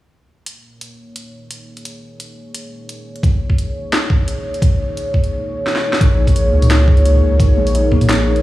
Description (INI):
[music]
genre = half-time drum and bass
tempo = 173 BPM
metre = 4/4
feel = half-time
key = Bb minor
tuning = A4 = 442 Hz
[part]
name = dark analog pad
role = sustained chords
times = 0.5-8.4 s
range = Bb3 to Db5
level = -22 LUFS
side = equal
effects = chorus, sidechain pumping
[part]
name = drum and bass drum kit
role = drums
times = 0.5-8.4 s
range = hi-hat, snare drum, toms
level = -20 LUFS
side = equal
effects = overdrive
[part]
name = electronic kick drum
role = drums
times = 3.2-8.0 s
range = none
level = -14 LUFS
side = equal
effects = overdrive
[part]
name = warbly dusty pluck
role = arpeggios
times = 6.0-8.3 s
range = Ab3 to Eb4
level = -25 LUFS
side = left 1 dB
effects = chorus, phaser, dub echo
[part]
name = saturated sub bass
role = bass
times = 6.0-8.4 s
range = Bb1 to Db2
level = -14 LUFS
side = equal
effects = none
[sound]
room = little or no reverb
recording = played on a big sound system in a bare room, stone room reverb, small room ambience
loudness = -13 LUFS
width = side -16 dB against mid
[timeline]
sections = 0.5-6.0 A section; 6.0-8.4 B section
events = break 5.3-6.0; drum fill 5.7-6.0; drop 6.0-8.4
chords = 0.5 Bbm